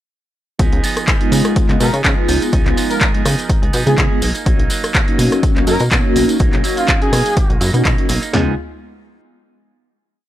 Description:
filtered disco house; 124 BPM; 4/4; swing 54% on 16ths; Db mixolydian; A4 = 440 Hz
mellow synth brass; accompaniment; 0.6-8.5 s; Ab3 to Gb4; -19 LUFS; equal; chorus, phaser, sidechain pumping
electric guitar with an envelope filter; riff; 0.6-8.5 s; F3 to Ab4; -24 LUFS; right 5 dB; sidechain pumping
plucky analog bass; bass; 0.6-8.6 s; Cb2 to Db3; -18 LUFS; equal; sidechain pumping
punchy analog drum machine; drums; 0.6-8.5 s; kick drum, snare drum, toms; -16 LUFS; equal
punchy analog drum machine; drums; 0.6-8.3 s; handclaps, hi-hat, rim click; -21 LUFS; equal; sidechain pumping on hats
tambourine; percussion; 0.6-8.3 s; -28 LUFS; right 1 dB; sidechain pumping on perc
mellow trumpet section; melody; 1.8-7.7 s; F4 to Bb4; -22 LUFS; equal; sidechain pumping, analog delay
little or no reverb; dry, gritty hardware recording, transformer saturation; -13 LUFS; side -13 dB against mid
0.6-8.3 drop; 8.3-10.3 final chord
drop 0.6-8.3
0.6 Db9; 4.2 Cbmaj7; 8.3 Db9

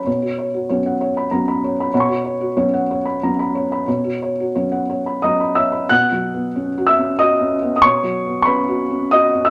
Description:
neoclassical minimalist piano; 88-98 BPM; 3/4; rubato; B major; A4 = 440 Hz
felt-muted upright piano; solo; 0.0-9.5 s; B2 to F#6; -18 LUFS; equal
wet club reverb, RT60 0.7 s; -18 LUFS; mono
0.0-5.9 A section; 5.9-9.5 B section
0.0 Bsus2

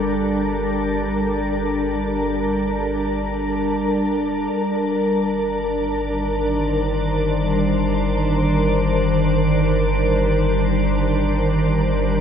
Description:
ambient; free time; A4 = 440 Hz
glassy FM pad; sustained chords; 0.0-12.2 s; Eb3 to C5; -20 LUFS; equal; ensemble chorus, built-in reverb
warm sub bass; bass; 0.0-12.2 s; G1; -25 LUFS; equal
organ-like drone; drone; 0.0-12.2 s; G3 to D4; -24 LUFS; equal; ensemble chorus, built-in reverb
wet huge ambient reverb, RT60 8.0 s; -18 LUFS; side -8 dB against mid
0.0-12.2 A section
fade-in on sub bass 0.0-12.2
0.0 Gmadd9; 4.5 Cm9/G

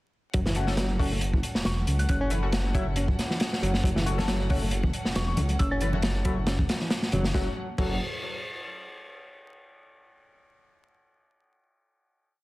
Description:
breakbeat, breaks; 137 BPM; 4/4; swing 54% on 16ths; F# minor pentatonic; A4 = 443 Hz
warm chamber string section; sustained chords; 0.3-7.5 s; F#3 to F#5; -39 LUFS; equal; sidechain pumping
barky reed electric piano; riff; 0.3-8.0 s; E3 to C#4; -33 LUFS; equal; fast tremolo, overdrive, digital delay
detuned saw bass; bass; 0.3-8.0 s; E1 to C#2; -28 LUFS; equal
crunchy breakbeat drum kit; drums; 0.3-7.9 s; crash cymbal, hi-hat, kick drum, snare drum; -28 LUFS; equal
band-passed chord stab; stabs; 0.6-8.0 s; A3 to B4; -36 LUFS; left 4 dB; chorus, phaser, digital delay
soft synth bell; melody; 1.7-2.2, 5.2-5.9 s; C#6 to A6; -37 LUFS; equal; chorus, telephone sound, digital delay
congas; percussion; 4.2-7.2 s; -33 LUFS; left 1 dB
light reverb, small room ambience; dense, heavily limited modern master, vinyl crackle; -24 LUFS; side -19 dB against mid
0.3-7.3 groove; 7.3-9.1 final chord
0.3 F#m

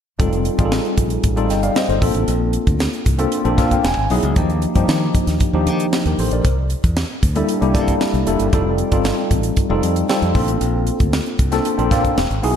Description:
polished 1980s jazz-funk pop; 115 BPM; 4/4; straight; Bb major; A4 = 440 Hz
tine electric piano; accompaniment; 0.2-12.6 s; F3 to G#5; -18 LUFS; left 1 dB; overdrive, fast stereo tremolo, wide subtle chorus
modern bright fingered electric bass; bass; 0.2-12.5 s; E1 to Eb3; -20 LUFS; equal
tight funk drum kit; drums; 0.2-12.6 s; hi-hat, kick drum, snare drum; -20 LUFS; equal
moderate lush hall reverb, RT60 1.6 s, small room ambience; dreamy mix soaked in reverb, lossy compression artefacts; -15 LUFS; side -8 dB against mid
0.2-12.6 A section
tine electric piano fill 3.3-4.4
0.2 F9; 2.0 Bbmaj7; 3.8 Emaj9; 4.4 Ebmaj9; 6.4 C13; 8.5 F9; 10.4 Bbmaj7

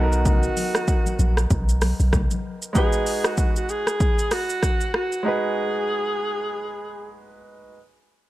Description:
afrobeats; 96 BPM; 4/4; swing 58% on 16ths; G# minor; A4 = 440 Hz
warm alto saxophone; melody; 0.0-7.1 s; F#4 to G#4; -26 LUFS; right 1 dB; slapback echo
clear concert grand piano; accompaniment; 0.0-7.8 s; D#3 to B4; -29 LUFS; right 2 dB
warm 808-style bass; bass; 0.0-2.3 s; A#1 to B1; -20 LUFS; equal
deep house drum kit; drums; 0.1-5.2 s; hi-hat, kick drum, rim click, shaker; -22 LUFS; equal; overdrive
congas; percussion; 0.3-2.4 s; -32 LUFS; left 4 dB
light reverb, small room ambience; -20 LUFS; side -16 dB against mid
0.0-7.8 A section
0.0 Bmaj7; 2.8 G#m7

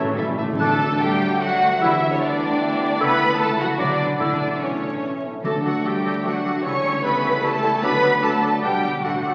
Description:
classical; 150 BPM; 3/4; rubato; D major; A4 = 440 Hz
clear symphonic violin section; melody; 0.0-9.3 s; C#5 to C#6; -28 LUFS; equal
bright clarinet; second line; 0.0-9.3 s; D4 to A4; -35 LUFS; equal
mellow hollow silver concert flute; second line; 0.0-9.3 s; E5 to F#6; -33 LUFS; equal
rich chamber violin section; second line; 0.0-9.3 s; C#4 to E5; -29 LUFS; equal
warm oboe; second line; 0.0-9.3 s; A4 to D5; -37 LUFS; equal
dark bassoon; accompaniment; 0.0-9.3 s; E3 to A3; -36 LUFS; equal
rich studio viola section; accompaniment; 0.0-9.3 s; F#3 to C#5; -29 LUFS; equal
dark French horn section; sustained chords; 0.0-9.3 s; A3 to E4; -32 LUFS; equal
warm trombone section; sustained chords; 0.0-9.3 s; A2 to A3; -36 LUFS; equal
concert harp; arpeggios; 0.0-9.3 s; A2 to A5; -29 LUFS; equal
clear studio cello section; bass; 0.0-9.3 s; C#3 to C#4; -32 LUFS; equal
clear symphonic double bass section; bass; 0.0-9.3 s; A1 to D2; -35 LUFS; equal
timpani; percussion; 0.0-1.2, 4.2-6.0 s; A2 to D3; -32 LUFS; equal
wet scoring stage reverb, RT60 1.7 s; very old 78 rpm record, vinyl crackle; -21 LUFS; mono
0.6-9.3 A section
timpani fill 0.0-0.6
0.0 A; 0.6 D; 1.8 Em7/D; 3.0 A/C#; 3.8 Bm; 4.2 A; 5.4 D; 6.6 A7/C#; 7.8 D; 8.6 G/B

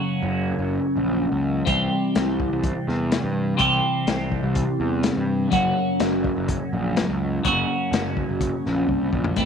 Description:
psychedelic rock; 125 BPM; 4/4; straight; A4 = 440 Hz
twelve-string electric guitar; riff; 0.0-9.5 s; F#2 to G4; -22 LUFS; equal; phaser, double-tracked left and right
fuzz picked electric bass; bass; 0.2-9.5 s; F#1 to G2; -26 LUFS; equal; overdrive
vintage drum kit; drums; 1.7-9.5 s; hi-hat, kick drum, snare drum, toms; -27 LUFS; left 3 dB
light reverb; 1960s-style stereo; -20 LUFS; side -7 dB against mid
0.0-9.4 A section
drum fill 8.9-9.4
0.0 F#; 1.7 C; 5.5 F#

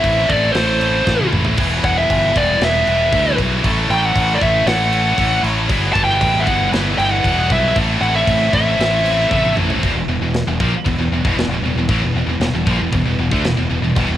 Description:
heavy metal; 116 BPM; 4/4; straight; E minor; A4 = 441 Hz
high-gain lead guitar; melody; 0.0-9.5 s; C5 to A5; -18 LUFS; equal; distortion, cassette tape
hollow soft pad; sustained chords; 0.1-14.2 s; G3 to C#5; -31 LUFS; right 1 dB; ensemble chorus
heavy high-gain guitar; riff; 0.0-14.2 s; E2 to A3; -23 LUFS; left 8 dB; distortion
high-gain distorted guitar; riff; 0.0-14.2 s; E2 to A3; -24 LUFS; right 8 dB; distortion
scooped high-gain guitar; riff; 0.0-14.2 s; E2 to B4; -22 LUFS; equal; distortion
growling fingered electric bass; bass; 0.0-14.2 s; E1 to D2; -21 LUFS; equal; overdrive
tight metal drum kit; drums; 0.0-14.1 s; crash cymbal, kick drum, snare drum, toms; -22 LUFS; equal; cassette tape
studio reverb; home recording on cassette; -14 LUFS; side -12 dB against mid
0.0-9.8 A section; 9.8-14.2 B section
half time 0.0-9.8; drum fill 1.1-1.6, 9.3-9.8
0.0 Am; 1.6 Em; 3.6 A; 5.7 Em/G; 7.8 Am; 9.8 Em

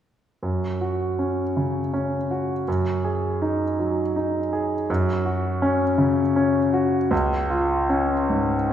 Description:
classical; 80 BPM; 3/4; rubato; A4 = 440 Hz
bright concert grand piano; accompaniment; 0.4-8.7 s; C#2 to G#4; -20 LUFS; equal
wet recital hall reverb, RT60 1.4 s; heard from further back in the room; -20 LUFS; side -10 dB against mid
0.4-8.7 A section
0.4 F#5; 2.7 G#5/F#; 4.9 F#5; 7.1 C#

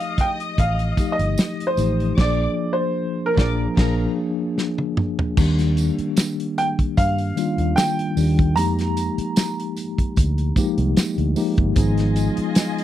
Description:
lush 1970s-style soul; 75 BPM; 4/4; swing 54% on 16ths; Eb major from 5.4 s; A4 = 440 Hz
clear grand piano; melody; 0.0-10.9 s; Bb4 to Bb5; -25 LUFS; right 2 dB
muted studio string section; second line; 0.0-4.1, 11.8-12.8 s; F4 to Eb6; -31 LUFS; left 3 dB
mellow tine electric piano; accompaniment; 0.0-12.8 s; Eb3 to Ab4; -24 LUFS; left 2 dB; medium stereo tremolo
warm soul drum kit; drums; 0.0-12.8 s; crash cymbal, hi-hat, kick drum, snare drum, toms; -20 LUFS; equal
vintage muted fingered electric bass; bass; 0.6-12.4 s; G1 to G2; -21 LUFS; equal
tambourine; percussion; 1.0-12.8 s; -36 LUFS; right 8 dB
little or no reverb; dry, close 1970s-style studio recording; -18 LUFS; side -12 dB against mid
0.0-5.4 A section; 5.4-12.8 B section
grand piano solo 0.0-5.4; band accent 2.2-5.4; drum fill 4.6-5.4
0.0 F9; 2.2 Bb7; 5.4 Ebmaj7; 8.6 Fm11; 11.8 Abm6

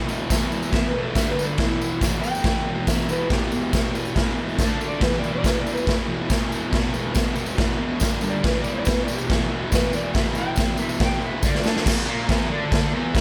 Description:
garage rock duo or trio; 140 BPM; 4/4; straight; E minor; A4 = 440 Hz
thick fuzz guitar; riff; 0.0-13.2 s; E2 to D4; -28 LUFS; equal; distortion
tambourine; percussion; 0.1-11.8 s; -38 LUFS; equal
raw garage drum kit; drums; 0.3-13.2 s; crash cymbal, kick drum, snare drum; -25 LUFS; equal
electric slide guitar; melody; 0.7-11.7 s; E4 to G5; -31 LUFS; equal
light reverb; -23 LUFS; mono
0.0-11.9 A section; 11.9-13.2 B section
electric slide guitar solo 0.0-11.9; drum fill 11.4-11.9
0.0 E5; 1.2 G5; 1.6 Em; 4.6 D5; 5.0 E5; 8.0 G5; 8.4 Em; 11.4 D5; 11.9 N.C.

